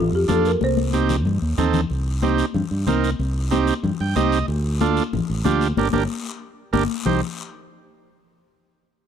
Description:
latin, cumbia; 186 BPM; 4/4; straight; C dorian; A4 = 440 Hz
folk marimba with medium mallets; melody; 0.0-1.6 s; F4 to C5; -22 LUFS; equal
fingered electric bass; bass; 0.0-7.2 s; G1 to G2; -22 LUFS; equal
overdriven combo organ; accompaniment; 0.3-7.2 s; C4 to G5; -24 LUFS; right 10 dB
congas; percussion; 0.3-7.1 s; -25 LUFS; left 9 dB
guiro; percussion; 0.3-7.1 s; -36 LUFS; left 8 dB
small room ambience; dry, close 1970s-style studio recording; -19 LUFS; side -8 dB against mid
0.0-1.9 A section; 1.9-7.1 B section; 7.1-8.3 C section
drum fill 0.6-1.9; transistor combo organ fill 3.8-4.5; band accent 5.8-7.1
0.0 Dm; 0.6 Cm; 4.5 Dm; 5.8 Gm; 7.1 Cm

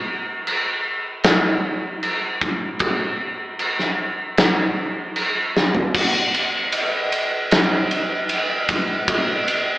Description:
metal; 77 BPM; 4/4; straight
big rock drum kit; drums; 0.5-9.7 s; crash cymbal, kick drum, ride cymbal, snare drum, toms; -18 LUFS; equal
little or no reverb; band playing live in one room, AM radio sound; -18 LUFS; side -17 dB against mid
0.0-5.9 A section; 5.9-9.8 B section
drum fill 5.5-5.9

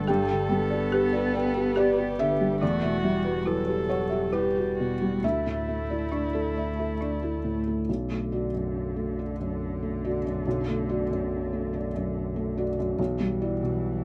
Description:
neoclassical piano and strings; 71 BPM; 3/4; rubato; B minor; A4 = 440 Hz
dark cello; second line; 0.0-14.0 s; D3 to B3; -36 LUFS; equal
dark viola; accompaniment; 0.0-7.7 s; E4 to A4; -36 LUFS; equal; slapback echo
felt-muted upright piano; accompaniment; 0.0-14.0 s; B1 to G5; -29 LUFS; equal
sub bass with octave; bass; 0.0-14.0 s; E1 to D2; -38 LUFS; equal
folk marimba with medium hard mallets; arpeggios; 0.1-7.4 s; D4 to G5; -34 LUFS; equal
little or no reverb; recorded outdoors, with no room sound; -27 LUFS; mono
0.0-7.9 A section; 7.9-14.0 B section
0.0 G; 2.6 Emadd9; 5.2 Dsus2; 7.9 Bm7; 13.0 G6/B

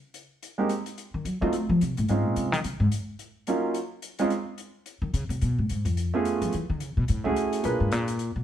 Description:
jazz piano trio; 216 BPM; 4/4; swing 59% on 8ths; Bb minor; A4 = 435 Hz
hi-hat; drums; 0.1-8.3 s; -43 LUFS; left 6 dB
warm concert grand piano; melody; 0.6-8.1 s; Gb3 to Cb5; -26 LUFS; right 3 dB
upright bass; bass; 1.1-2.9, 5.0-8.4 s; Db2 to Bb3; -26 LUFS; left 1 dB
moderate studio reverb, RT60 0.9 s; heard from further back in the room; -24 LUFS; side -10 dB against mid
0.0-4.3 A section; 4.3-8.4 A section
upright bass solo 0.0-8.4
0.0 N.C.; 1.0 Cm7b5 (rootless); 1.5 F; 2.1 Bbm11; 3.2 Ebm7; 3.7 N.C.; 4.3 Dbsus2; 5.4 Fdim; 6.0 Db7b13; 6.5 Gbm9; 7.6 Bb7b9

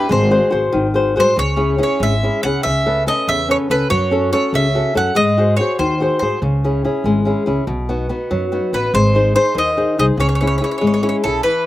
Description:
italian folk, Italian serenade; 95 BPM (dotted quarters); 6/8; straight; C# minor; A4 = 440 Hz
bowl-back mandolin; melody; 0.0-6.4, 8.7-11.6 s; A4 to F#5; -18 LUFS; equal
flamenco guitar; accompaniment; 0.0-11.7 s; B2 to B#4; -18 LUFS; left 2 dB; slapback echo
upright bass; bass; 0.0-11.4 s; G#1 to G#2; -20 LUFS; equal
little or no reverb; recorded outdoors, with no room sound; -14 LUFS; side -15 dB against mid
0.0-1.4 A section; 1.4-11.5 B section
0.1 G#7; 1.4 C#m; 2.6 Aadd9/C#; 3.9 F#m; 5.2 G#7; 6.4 C#m; 7.7 B; 8.9 G#; 10.2 C#m

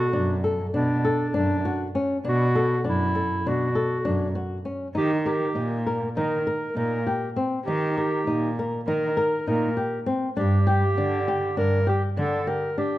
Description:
contemporary instrumental, chamber music in an uneven meter; 200 BPM (eighths); 9/8; straight; A4 = 440 Hz
warm clarinet; melody; 0.0-13.0 s; D4 to Bb4; -27 LUFS; right 1 dB
flamenco guitar; arpeggios; 0.0-13.0 s; C4 to Bb4; -27 LUFS; left 2 dB
dark cello; bass; 0.1-12.4 s; F#2 to Eb3; -26 LUFS; right 1 dB
light reverb; dark, warm production; -22 LUFS; side -15 dB against mid
0.0-13.0 A section
0.0 Bm7; 5.0 Eb; 10.4 G5

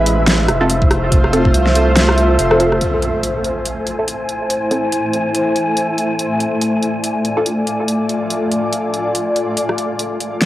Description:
deep dubstep; 142 BPM; 4/4; swing 58% on 16ths, half-time; A harmonic minor; A4 = 441 Hz
granular cloud pad; sustained chords; 0.0-10.5 s; A3 to D5; -18 LUFS; equal; built-in reverb
saturated sub bass; bass; 0.0-2.8 s; F1 to C2; -17 LUFS; equal; tube saturation
wind-like tuned noise texture; texture; 0.0-9.6 s; E5 to G#5; -23 LUFS; equal; built-in reverb
dubstep drum kit; drums; 0.1-10.5 s; hi-hat, rim click, snare drum; -19 LUFS; equal; overdrive, cassette tape
filtered dub chord stab; stabs; 0.6-7.5 s; C4 to A4; -20 LUFS; equal; phaser, wide subtle chorus, vintage 12-bit sampler grit, dub echo
electronic kick drum; drums; 0.8-1.5 s; -13 LUFS; equal; overdrive, cassette tape
impact and riser; sound effects; 2.8-4.5, 9.9-10.5 s; -27 LUFS; equal
light reverb, digital ambience; home recording on cassette; -14 LUFS; side -14 dB against mid
0.0-2.8 A section; 2.8-9.6 B section
drop 0.0-2.8; impact 2.8-4.5; filter sweep on ambient pad 2.8-9.6
0.0 F; 2.8 Am; 6.2 Dm; 9.6 Am

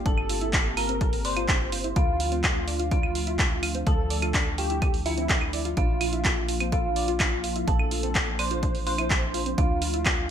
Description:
melodic techno; 126 BPM; 4/4; straight; D minor; A4 = 440 Hz
dark analog pad; sustained chords; 0.0-10.3 s; F3 to G4; -36 LUFS; equal; chorus, sidechain pumping
tight sequencer bass; bass; 0.0-10.3 s; G1 to D2; -32 LUFS; equal; sidechain pumping
wide unison lead; melody; 0.1-10.3 s; E4 to C5; -33 LUFS; equal; sidechain pumping, ping-pong delay
dark detuned synth bell; second line; 0.1-10.3 s; E5 to C6; -33 LUFS; right 1 dB; chorus, phaser, sidechain pumping, digital delay
soft round pluck; arpeggios; 0.1-10.1 s; C4 to D6; -34 LUFS; equal; wide subtle chorus, sidechain pumping, digital delay
electronic kick drum; drums; 0.1-10.2 s; -26 LUFS; equal
punchy analog drum machine; drums; 0.1-10.2 s; claves, handclaps, hi-hat; -28 LUFS; right 1 dB; gated reverb
light reverb; bright 1980s-style digital production; -23 LUFS; side -9 dB against mid
0.0-10.3 A section
0.0 Gm; 2.0 Dm; 5.8 Bb; 9.6 Dm

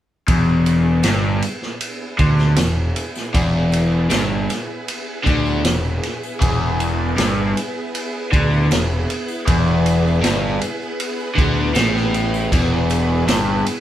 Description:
psychedelic rock; 78 BPM; 4/4; straight; A4 = 444 Hz
string machine, violins; sustained chords; 0.3-13.8 s; B3 to B4; -27 LUFS; equal; ensemble chorus
overdriven electric guitar; riff; 0.3-13.6 s; E2 to D3; -18 LUFS; equal; phaser
fuzz picked electric bass; bass; 0.3-13.6 s; E1 to D2; -22 LUFS; equal; overdrive
vintage drum kit; drums; 0.3-13.8 s; kick drum, ride cymbal, snare drum; -22 LUFS; equal
tambourine; percussion; 0.3-13.8 s; -38 LUFS; left 5 dB
moderate studio reverb, RT60 0.5 s; band playing live in one room; -16 LUFS; side -12 dB against mid
0.3-13.8 A section
0.3 E

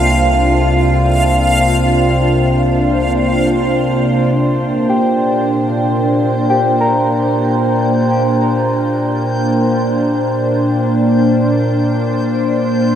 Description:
ambient; free time; A4 = 439 Hz
evolving wavetable pad; sustained chords; 0.0-13.0 s; Bb2 to C5; -13 LUFS; equal; chorus, built-in reverb
muted felt-like synth keys; arpeggios; 0.0-12.9 s; E5 to Bb5; -21 LUFS; left 1 dB; chorus, tape echo
deep rumbling drone; bass; 0.0-4.3 s; C2; -19 LUFS; equal; built-in reverb
backwards swelling texture; texture; 0.0-13.0 s; F5 to G6; -22 LUFS; equal; built-in reverb
wet huge ambient reverb, RT60 8.8 s; -12 LUFS; side -9 dB against mid
0.0-4.4 A section; 4.4-13.0 B section
fade-in on synth texture 4.4-13.0
0.0 C9sus4; 4.4 Bbadd9

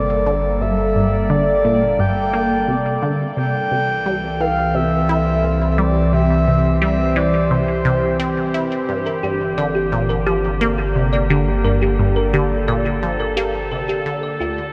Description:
ambient, sequencer-driven space music; 87 BPM; 4/4; straight; G dorian; A4 = 437 Hz
breathy flute-like synth lead; melody; 0.0-8.5 s; C5 to G5; -24 LUFS; equal; chorus, delay
evolving wavetable pad; sustained chords; 0.0-14.7 s; D3 to D5; -24 LUFS; equal; chorus, built-in reverb
resonant blip pluck; riff; 0.0-14.6 s; D2 to E4; -24 LUFS; equal; phaser, delay
round analog bass; bass; 0.0-14.7 s; G1 to D2; -26 LUFS; equal
thumb-piano-like synth pluck; arpeggios; 9.1-14.5 s; F4 to D5; -26 LUFS; equal; chorus, delay
wet huge ambient reverb, RT60 7.5 s; in a vast, echoing space; -18 LUFS; mono
0.0-14.7 A section
fade-out 12.6-14.7
0.0 Gmadd9; 3.4 C; 8.9 Gmadd9

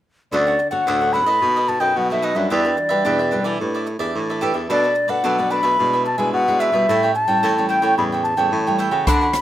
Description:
samba and choro; 110 BPM; 4/4; straight; A4 = 440 Hz
wooden flute; melody; 0.3-9.4 s; D5 to B5; -18 LUFS; left 1 dB
cavaquinho; accompaniment; 0.3-9.4 s; D4 to G5; -24 LUFS; right 4 dB
nylon-string guitar; accompaniment; 0.3-9.4 s; A2 to B4; -28 LUFS; left 2 dB
warm baritone saxophone; bass; 0.3-9.3 s; D2 to E3; -23 LUFS; equal
open jazz drum kit; drums; 9.1-9.4 s; hi-hat, kick drum, rim click; -19 LUFS; equal
light reverb, small room ambience; rough home demo mix; -16 LUFS; side -12 dB against mid
0.3-9.4 A section
0.3 Dmaj7; 1.4 B7; 2.5 Em9; 3.6 A9sus4; 4.7 Bm7; 5.8 E7/B; 6.9 A7

